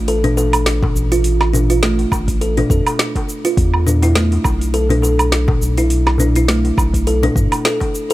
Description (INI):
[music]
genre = organic downtempo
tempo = 103 BPM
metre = 4/4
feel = swing 56% on 16ths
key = unclear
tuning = A4 = 440 Hz
[part]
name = kalimba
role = arpeggios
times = 0.0-8.1 s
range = A3 to A4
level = -18 LUFS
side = equal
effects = tape echo
[part]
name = round analog bass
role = bass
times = 0.0-7.5 s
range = A1 to G2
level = -16 LUFS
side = equal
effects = sidechain pumping
[part]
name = afro-pop drum kit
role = drums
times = 0.1-8.1 s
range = hi-hat, shaker, snare drum, woodblock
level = -21 LUFS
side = right 1 dB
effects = overdrive
[part]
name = darbuka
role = percussion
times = 0.2-7.9 s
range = none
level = -24 LUFS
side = left 1 dB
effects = none
[part]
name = electronic kick drum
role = drums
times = 0.8-7.9 s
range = none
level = -18 LUFS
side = equal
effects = overdrive
[sound]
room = digital ambience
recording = none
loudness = -13 LUFS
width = side -16 dB against mid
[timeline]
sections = 0.0-8.1 A section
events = none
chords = 0.0 Dm (rootless); 3.6 E7(no3)